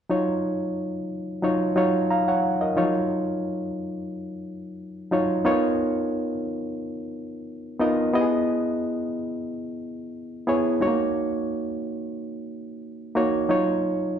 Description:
soul; 90 BPM; 4/4; swing 54% on 16ths; A4 = 440 Hz
barky reed electric piano; solo; 0.1-14.2 s; E#3 to A#5; -23 LUFS; equal; overdrive
wet large studio reverb, RT60 1.4 s; band playing live in one room; -22 LUFS; side -8 dB against mid
0.1-2.8 A section; 2.8-14.2 B section
0.1 D#m9; 5.5 Bmaj9#11; 8.1 Emaj7; 10.8 F#6; 13.5 D#m9

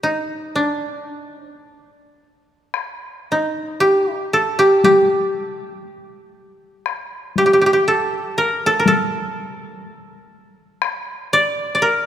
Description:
japanese traditional, Japanese chamber music; 54-62 BPM; 4/4; rubato; A4 = 440 Hz
koto; melody; 0.0-12.1 s; D4 to D5; -16 LUFS; equal
solo taiko drums; percussion; 2.7-11.1 s; -24 LUFS; left 5 dB
moderate church reverb, RT60 2.9 s; -16 LUFS; side -10 dB against mid
0.0-2.7 A section; 2.7-12.1 B section

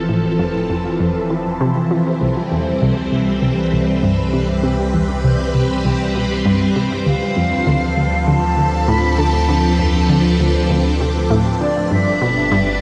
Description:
ambient, sequencer-driven space music; 99 BPM; 4/4; straight; A4 = 441 Hz
phased string machine; sustained chords; 0.0-12.8 s; E3 to B4; -20 LUFS; equal; ensemble chorus, phaser
round analog bass; bass; 0.0-12.8 s; F1 to D2; -25 LUFS; equal
wind-like tuned noise texture; texture; 1.0-12.8 s; B4; -37 LUFS; equal
analog pluck; riff; 0.1-12.6 s; C2 to F3; -21 LUFS; equal; chorus, tape echo
wooden flute; melody; 7.1-12.8 s; D5 to B5; -24 LUFS; equal; tape echo
wet cathedral reverb, RT60 6.6 s; in a vast, echoing space, cassette tape; -17 LUFS; mono
0.0-12.8 A section
fade-in on analog synth bass 0.0-12.8
0.0 Fmaj7; 2.2 Cmaj7; 7.1 Dm7; 11.9 G

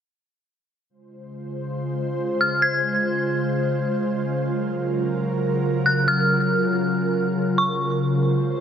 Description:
hip hop; free time; Db major; A4 = 440 Hz
ethereal airy pad; sustained chords; 1.3-8.6 s; Db3 to C5; -22 LUFS; equal; ensemble chorus, built-in reverb
dark detuned synth bell; melody; 2.4-7.8 s; Db6 to Ab6; -23 LUFS; equal; chorus, low-pass filter, digital delay
moderate huge ambient reverb, RT60 6.4 s; -20 LUFS; side -8 dB against mid
0.9-8.6 A section
0.9 Dbmaj7; 4.3 Gbmaj7; 7.8 Dbmaj7

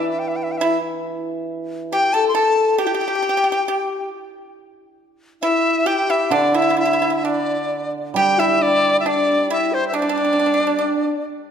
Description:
chinese traditional, Chinese chamber ensemble; 68 BPM; 2/4; rubato; D shang mode; A4 = 440 Hz
bright dizi; melody; 0.0-11.2 s; C5 to C6; -19 LUFS; left 2 dB
mellow hollow xiao; second line; 0.0-11.2 s; D4 to C5; -23 LUFS; left 2 dB
pipa; second line; 0.0-11.2 s; D4 to A4; -25 LUFS; right 6 dB
hammered dulcimer; accompaniment; 0.0-1.9, 6.3-10.8 s; D3 to G3; -26 LUFS; right 4 dB
wet scoring stage reverb, RT60 2.0 s; -17 LUFS; side -8 dB against mid
0.0-8.2 A section; 8.2-11.5 B section

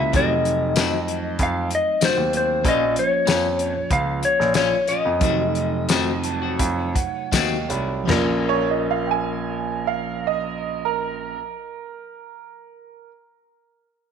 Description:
straight-eighth soul blues; 77-96 BPM; 4/4; straight; Bb minor; A4 = 441 Hz
electric slide guitar; melody; 0.0-11.4 s; Bb4 to F5; -23 LUFS; left 3 dB
bell-like tine electric piano; accompaniment; 0.0-11.4 s; C3 to A5; -29 LUFS; right 13 dB
clean electric guitar; stabs; 0.0-11.7 s; Eb3 to Gb4; -29 LUFS; left 10 dB; harmonic tremolo, tape echo
warm grand piano; bass; 0.0-11.4 s; F1 to F2; -26 LUFS; right 1 dB
warm soul drum kit; drums; 0.1-8.3 s; china cymbal, hi-hat, kick drum, snare drum, tambourine, toms; -23 LUFS; left 2 dB
clear upright piano; second line; 8.5-13.1 s; Bb4 to Ab5; -26 LUFS; right 12 dB
moderate plate reverb, RT60 2.4 s; 1960s-style stereo with parts hard left and right; -19 LUFS; side -7 dB against mid
0.0-8.1 A section; 8.1-11.2 B section
slowing down 2.6-8.1; tine electric piano fill 5.9-8.1
0.1 F7b9; 2.6 Bbm; 5.2 F7b9; 8.1 Bbm

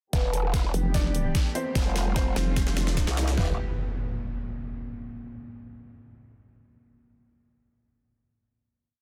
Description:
heavy wobble dubstep; 148 BPM; 4/4; half-time; E phrygian; A4 = 440 Hz
felt-muted upright piano; melody; 0.1-3.5 s; B3 to D5; -38 LUFS; equal; low-pass filter, digital delay
dark chamber string section; sustained chords; 0.1-3.6 s; E3 to G4; -39 LUFS; equal; sidechain pumping, low-pass filter
growl bass; bass; 0.1-3.6 s; E1 to C2; -29 LUFS; equal; chorus, overdrive
dubstep drum kit; drums; 0.1-3.5 s; kick drum, snare drum, toms; -29 LUFS; equal; overdrive
dubstep drum kit; drums; 0.1-3.4 s; hi-hat, snare drum; -36 LUFS; equal; overdrive, high-pass filter on snare, high-pass filter on hats
riser and impact; sound effects; 1.5-5.0 s; -38 LUFS; equal
vowel-sweep wobble bass; bass; 0.7-3.1 s; F1; -28 LUFS; equal; chorus, overdrive
little or no reverb; dense, heavily limited modern master; -27 LUFS; mono
0.1-3.4 build; 3.4-5.0 final chord
build-up 0.1-3.4; drum fill 0.1-3.4; filter sweep on string section 0.1-3.4; filter sweep on felt piano 0.1-3.4
0.1 Em; 1.8 Fadd9; 3.4 Em

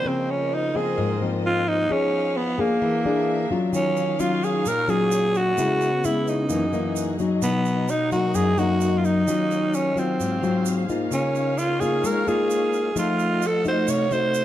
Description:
bossa nova; 130 BPM; 4/4; straight; A4 = 440 Hz
growling alto saxophone; melody; 0.0-14.4 s; Bb3 to Db5; -23 LUFS; right 2 dB; plate reverb
nylon-string guitar; accompaniment; 0.0-14.4 s; Gb2 to Ab4; -23 LUFS; left 3 dB
warm studio string section; sustained chords; 0.0-14.4 s; A3 to Gb5; -32 LUFS; equal
egg shaker; percussion; 3.7-14.4 s; -38 LUFS; right 10 dB
moderate large studio reverb, RT60 0.9 s; dark, warm production; -20 LUFS; side -12 dB against mid
0.0-14.4 A section
0.0 Dbmaj13; 1.9 Fm7b5; 2.8 E7#11; 3.7 Ebm9; 5.6 Dbm7; 6.5 Gb13; 7.4 Bmaj7; 9.3 Ebm9; 10.2 Ab13; 11.1 Db69; 13.0 F7b9

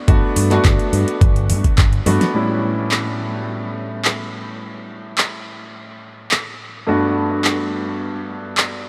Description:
nu-disco, nu disco; 106 BPM; 4/4; straight; A mixolydian; A4 = 440 Hz
clear baby grand piano; accompaniment; 0.0-8.9 s; G2 to F#4; -24 LUFS; equal; lush chorus, sidechain pumping, analog delay
picked electric bass with an envelope filter; bass; 0.1-2.2 s; G1 to G2; -20 LUFS; equal
electronic kick drum; drums; 0.1-1.9 s; -17 LUFS; equal; overdrive
pop drum kit; drums; 0.1-8.7 s; handclaps, hi-hat, snare drum; -25 LUFS; equal; overdrive
moderate cathedral reverb, RT60 6.5 s; dreamy mix soaked in reverb; -18 LUFS; mono
0.0-2.3 A section; 2.3-8.9 B section
drum fill 2.1
0.0 Gmaj7; 2.3 A7; 6.9 Gmaj7

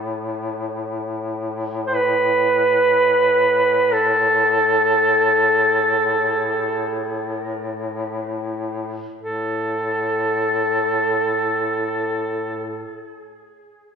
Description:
caucasian folk, Caucasian lament; free time; A4 = 440 Hz
warm duduk; drone; 0.0-12.9 s; A2; -27 LUFS; left 3 dB
clear duduk; melody; 1.9-12.9 s; A4 to C5; -17 LUFS; right 1 dB; tape echo
wet lush hall reverb, RT60 1.7 s, studio reverb; dreamy mix soaked in reverb; -17 LUFS; side -6 dB against mid
0.0-9.2 A section; 9.2-14.0 B section
slowing down 0.0-9.2

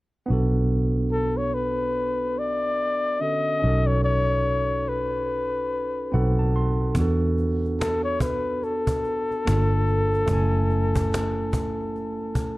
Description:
R&B, neo-soul; 72 BPM; 4/4; swing 60% on 16ths; B dorian; A4 = 445 Hz
barky tine electric piano; accompaniment; 0.3-12.6 s; D3 to C6; -28 LUFS; right 3 dB; overdrive
vintage muted fingered electric bass; bass; 0.3-12.6 s; F#1 to E2; -24 LUFS; equal
warm flugelhorn; melody; 1.1-12.6 s; A4 to D#5; -25 LUFS; left 2 dB
cajon; drums; 6.9-12.6 s; -29 LUFS; equal
little or no reverb; dark, warm production, lossy compression artefacts; -21 LUFS; side -19 dB against mid
0.3-12.6 A section
tine electric piano fill 5.7-6.9
0.3 Bm9; 3.6 B9; 6.1 B7b9; 6.9 E9sus4; 9.4 Gm9; 10.3 F#m9

